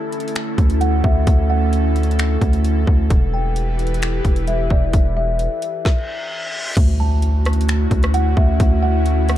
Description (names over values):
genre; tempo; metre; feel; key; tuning
hip hop, atmospheric cloud-rap; 131 BPM; 4/4; half-time; D major; A4 = 440 Hz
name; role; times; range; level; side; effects
kalimba; melody; 0.0-9.4 s; D5 to A5; -26 LUFS; equal; low-pass filter, ping-pong delay
airy breathy pad; sustained chords; 0.0-9.4 s; D3 to B4; -24 LUFS; equal; chorus, sidechain pumping
trap drum kit; drums; 0.1-9.4 s; crash cymbal, finger snaps, hi-hat, kick drum, rim click, snare drum; -18 LUFS; equal; none
long sustained 808-style bass; bass; 0.6-9.4 s; E1 to D2; -17 LUFS; equal; none
reverse cymbal and impact; sound effects; 6.0-8.6 s; none; -28 LUFS; equal; none
room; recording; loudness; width
digital ambience; dark, warm production; -15 LUFS; side -12 dB against mid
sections
0.0-6.8 A section; 6.8-9.4 B section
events
break 0.0-0.4; stop 5.8-6.8; reverse cymbal 6.0-6.8; impact 6.8-8.6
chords
0.0 Dmaj7; 3.1 Em; 6.8 Dmaj7